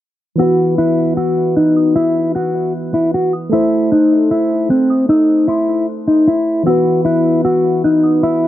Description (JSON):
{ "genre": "hip hop", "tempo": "153 BPM", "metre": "4/4", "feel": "half-time", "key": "unclear", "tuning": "A4 = 439 Hz", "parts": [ { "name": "mellow electric guitar", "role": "melody", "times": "0.4-8.5 s", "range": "C4 to F#4", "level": "-13 LUFS", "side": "left 1 dB", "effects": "low-pass filter" }, { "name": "dark detuned synth bell", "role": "second line", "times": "0.4-8.5 s", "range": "C6 to F#6", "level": "-37 LUFS", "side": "right 2 dB", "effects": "chorus, tremolo, ping-pong delay" }, { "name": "soft electric-piano-like synth keys", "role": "accompaniment", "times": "0.4-8.5 s", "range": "E3 to C5", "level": "-18 LUFS", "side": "equal", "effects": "chorus, low-pass filter" } ], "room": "moderate studio reverb, RT60 0.6 s", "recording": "low-pass filter", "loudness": "-12 LUFS", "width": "side -13 dB against mid", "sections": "0.4-8.5 A section", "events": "filter sweep 0.4-8.5", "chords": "0.4 Esus2; 3.5 Am; 6.7 Esus2" }